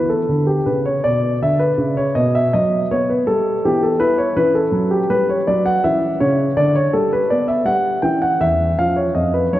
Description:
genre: classical, baroque-style suite movement for grand piano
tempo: 81 BPM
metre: 3/4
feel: rubato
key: unclear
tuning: A4 = 440 Hz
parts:
  - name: dark grand piano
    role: solo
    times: 0.0-9.6 s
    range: E2 to G5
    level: -15 LUFS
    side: equal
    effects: none
room: wet church reverb, RT60 3.2 s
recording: worn, warbling old tape, cassette tape, warbly pitch drift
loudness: -15 LUFS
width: side -14 dB against mid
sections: 0.0-9.6 A section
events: none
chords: 0.0 E5; 2.2 B5; 3.7 E5; 4.4 C#dim/E; 5.8 C#m; 6.6 Bm/D; 8.0 Em69; 8.8 C#/E#

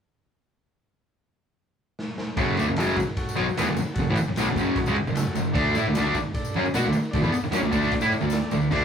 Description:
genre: garage rock duo or trio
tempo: 151 BPM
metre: 4/4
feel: straight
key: F# minor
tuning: A4 = 440 Hz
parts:
  - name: raw garage drum kit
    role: drums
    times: 2.0-8.8 s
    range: crash cymbal, kick drum, ride cymbal, snare drum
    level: -29 LUFS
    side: equal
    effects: none
  - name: combo organ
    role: sustained chords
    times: 2.4-8.8 s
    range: D4 to D5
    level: -35 LUFS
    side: right 2 dB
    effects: spring reverb
  - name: fuzz guitar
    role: riff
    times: 2.4-8.8 s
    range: F#2 to F#4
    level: -22 LUFS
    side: equal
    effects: distortion
  - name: overdriven fingered electric bass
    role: bass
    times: 2.4-8.8 s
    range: F#1 to B2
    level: -33 LUFS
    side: equal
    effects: tube saturation
  - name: tambourine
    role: percussion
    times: 2.4-8.8 s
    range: none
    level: -43 LUFS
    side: left 6 dB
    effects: none
room: moderate studio reverb, RT60 0.5 s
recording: rough rehearsal-room recording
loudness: -22 LUFS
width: side -7 dB against mid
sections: 0.8-2.4 A section; 2.4-8.8 B section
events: drum fill 2.0-2.4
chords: 0.8 N.C.; 2.4 F#m; 5.6 D5

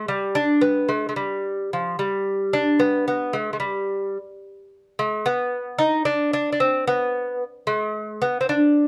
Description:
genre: persian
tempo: 74 BPM (dotted quarters)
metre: 6/8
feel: straight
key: G dastgah homayun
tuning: A4 = 440 Hz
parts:
  - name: lute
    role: solo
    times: 0.0-8.9 s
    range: F3 to Eb4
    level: -23 LUFS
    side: equal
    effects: none
room: light reverb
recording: dark, warm production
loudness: -23 LUFS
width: mono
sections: 0.0-2.0 A section; 2.0-8.9 B section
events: none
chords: none

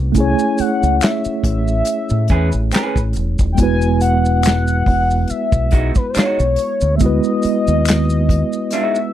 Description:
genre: R&B, neo-soul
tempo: 70 BPM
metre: 4/4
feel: swing 55% on 16ths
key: E major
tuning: A4 = 439 Hz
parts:
  - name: mellow tine electric piano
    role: accompaniment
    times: 0.0-9.1 s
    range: G#3 to C#5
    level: -20 LUFS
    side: right 2 dB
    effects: medium stereo tremolo
  - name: deep dub fingered electric bass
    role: bass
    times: 0.0-8.4 s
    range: D#1 to A2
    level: -17 LUFS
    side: equal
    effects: none
  - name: unplugged drum kit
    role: drums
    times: 0.1-8.9 s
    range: handclaps, hi-hat, kick drum, snare drum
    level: -17 LUFS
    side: equal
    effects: none
  - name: mellow horn-like synth lead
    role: melody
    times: 0.2-9.1 s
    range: B4 to G#5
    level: -20 LUFS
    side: left 2 dB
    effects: chorus, phaser, slapback echo
  - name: maracas and finger snaps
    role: percussion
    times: 0.2-9.1 s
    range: none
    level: -30 LUFS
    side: left 3 dB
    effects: none
  - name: electric guitar through a small old amp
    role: second line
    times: 2.3-9.0 s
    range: G#3 to B4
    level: -22 LUFS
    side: right 3 dB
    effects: none
room: small room ambience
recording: dry, close 1970s-style studio recording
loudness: -14 LUFS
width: side -11 dB against mid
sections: 0.0-9.1 A section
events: none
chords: 0.0 Amaj9; 3.6 Emaj9

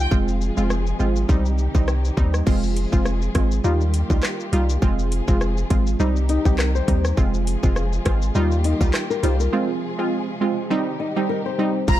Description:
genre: dancehall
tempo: 102 BPM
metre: 4/4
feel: swing 56% on 16ths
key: F minor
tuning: A4 = 440 Hz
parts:
  - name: warm studio violin section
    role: melody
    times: 0.0-0.1, 11.9-12.0 s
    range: Bb5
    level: -28 LUFS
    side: left 1 dB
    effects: ping-pong delay
  - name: warm studio string section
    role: sustained chords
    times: 0.0-12.0 s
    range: C3 to Ab4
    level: -31 LUFS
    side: left 1 dB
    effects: sidechain pumping
  - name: punchy sub bass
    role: bass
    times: 0.0-12.0 s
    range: F1 to Eb2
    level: -21 LUFS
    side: equal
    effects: none
  - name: analog pluck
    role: accompaniment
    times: 0.1-12.0 s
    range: G3 to F4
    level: -24 LUFS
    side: right 3 dB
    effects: chorus, sidechain pumping
  - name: island pop drum kit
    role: drums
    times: 0.1-12.0 s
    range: crash cymbal, handclaps, hi-hat, kick drum, rim click, shaker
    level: -22 LUFS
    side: equal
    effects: none
  - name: flamenco guitar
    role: arpeggios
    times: 6.3-11.9 s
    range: Eb4 to C5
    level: -26 LUFS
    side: left 7 dB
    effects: none
room: digital ambience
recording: dark, warm production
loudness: -18 LUFS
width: side -13 dB against mid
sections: 0.0-2.5 A section; 2.5-11.9 B section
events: break 9.5-11.9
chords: 0.1 Fm; 1.3 Cm; 2.5 Fm; 3.6 Ebadd9; 4.8 Fm; 6.0 Cm; 7.2 Fm; 8.4 Ebadd9; 9.5 Fm; 10.7 Cm

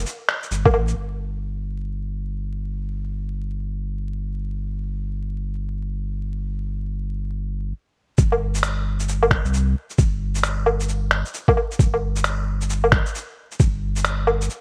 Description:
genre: future garage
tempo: 133 BPM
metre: 4/4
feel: swing 62% on 16ths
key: unclear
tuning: A4 = 440 Hz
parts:
  - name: warm sub bass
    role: bass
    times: 0.0-14.5 s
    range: G1 to C2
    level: -27 LUFS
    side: equal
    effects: sidechain pumping
  - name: electronic shaker, finger snaps and woodblock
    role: drums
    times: 0.1-0.9, 8.2-14.6 s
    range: none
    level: -24 LUFS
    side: equal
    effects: overdrive
  - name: electronic kick drum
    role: drums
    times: 0.7, 8.2-13.7 s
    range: none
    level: -20 LUFS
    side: equal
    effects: overdrive
room: light reverb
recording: bright 1980s-style digital production, vinyl crackle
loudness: -23 LUFS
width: mono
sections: 1.0-8.2 A section; 8.2-14.6 B section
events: stop 7.7-8.2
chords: none

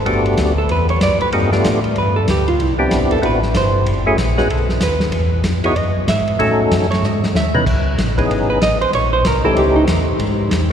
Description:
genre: soul jazz organ trio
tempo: 190 BPM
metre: 4/4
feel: swing 62% on 8ths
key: C# minor from 7.7 s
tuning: A4 = 438 Hz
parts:
  - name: hollow-body jazz guitar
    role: accompaniment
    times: 0.0-9.8 s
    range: D#4 to E5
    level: -20 LUFS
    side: right 2 dB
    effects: none
  - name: mellow tonewheel organ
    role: bass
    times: 0.0-10.7 s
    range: F#1 to A2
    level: -19 LUFS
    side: equal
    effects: slow rotary speaker
  - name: percussive tonewheel organ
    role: melody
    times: 0.1-10.7 s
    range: E3 to B4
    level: -19 LUFS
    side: left 1 dB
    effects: slow rotary speaker, chorus vibrato
  - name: warm soul drum kit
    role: drums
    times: 0.1-10.6 s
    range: crash cymbal, hi-hat, kick drum, ride cymbal, snare drum, toms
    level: -22 LUFS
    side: equal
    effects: none
room: wet cathedral reverb, RT60 6.0 s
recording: recorded in a church or concert hall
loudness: -14 LUFS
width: side -8 dB against mid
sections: 0.0-7.7 A section; 7.7-10.7 A section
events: hollow-body jazz guitar solo 0.0-10.7; drum fill 7.0-7.7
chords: 0.1 Gmaj7; 1.3 G7; 2.6 Cmaj7; 3.9 F#m7; 4.5 B7; 5.1 Emaj7; 6.4 D#m7b5; 7.0 G#5; 7.7 C#m9; 8.9 A#dim; 9.6 A7#11; 10.2 N.C.

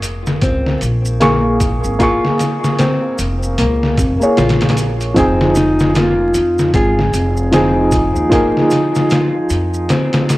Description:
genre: trip hop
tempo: 76 BPM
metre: 4/4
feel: swing 60% on 16ths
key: Bb minor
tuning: A4 = 440 Hz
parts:
  - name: felt-muted upright piano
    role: accompaniment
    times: 0.0-10.4 s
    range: F3 to Db6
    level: -17 LUFS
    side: equal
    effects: tremolo, tape echo
  - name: upright bass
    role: bass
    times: 0.0-9.9 s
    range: F1 to F2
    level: -18 LUFS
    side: equal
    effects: tube saturation
  - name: trip hop sampler-style drum kit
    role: drums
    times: 0.0-10.4 s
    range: hi-hat, kick drum, snare drum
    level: -17 LUFS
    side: equal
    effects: none
  - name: maracas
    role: percussion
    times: 0.0-10.4 s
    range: none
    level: -30 LUFS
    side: right 2 dB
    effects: none
  - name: nylon-string guitar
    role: arpeggios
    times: 0.4-10.3 s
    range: Bb3 to F4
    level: -21 LUFS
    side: left 2 dB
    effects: tape echo
  - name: mellow electric guitar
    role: melody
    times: 5.6-10.4 s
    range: Eb4 to Ab4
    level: -18 LUFS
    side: equal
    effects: tape echo
room: little or no reverb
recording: dry, gritty hardware recording, vinyl crackle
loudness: -12 LUFS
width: side -18 dB against mid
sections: 0.0-10.4 A section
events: none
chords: 0.0 Bbm7; 5.2 Fm7

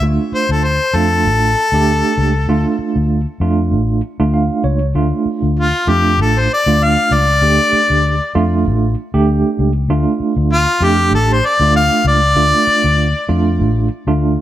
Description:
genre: blues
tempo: 97 BPM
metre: 4/4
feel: swing 55% on 16ths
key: D harmonic minor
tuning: A4 = 440 Hz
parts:
  - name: tine electric piano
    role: accompaniment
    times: 0.0-14.4 s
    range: A3 to F5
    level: -18 LUFS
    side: right 4 dB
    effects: medium tremolo
  - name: vintage muted fingered electric bass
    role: bass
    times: 0.0-14.4 s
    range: A1 to F2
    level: -16 LUFS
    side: left 1 dB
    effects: none
  - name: bright harmonica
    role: melody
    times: 0.3-13.3 s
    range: F4 to F5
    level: -14 LUFS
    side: left 2 dB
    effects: overdrive
room: light reverb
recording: none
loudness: -12 LUFS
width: side -13 dB against mid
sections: 0.0-5.0 A section; 5.0-14.4 B section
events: tine electric piano fill 4.0-5.0; harmonica solo 5.0-14.4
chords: 0.0 Dm

